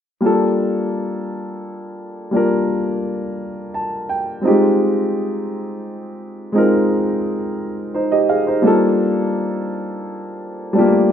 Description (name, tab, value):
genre	R&B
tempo	57 BPM (dotted quarters)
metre	6/8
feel	straight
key	G minor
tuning	A4 = 440 Hz
part	warm grand piano	solo	0.2-11.1 s	G3 to A5	-17 LUFS	equal	slapback echo
room	moderate studio reverb, RT60 0.6 s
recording	rough home demo mix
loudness	-16 LUFS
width	side -8 dB against mid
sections	0.2-8.6 A section; 8.6-11.1 B section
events	grand piano fill 3.4-4.4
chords	0.2 Gm9; 4.4 Fm9; 8.6 Gm9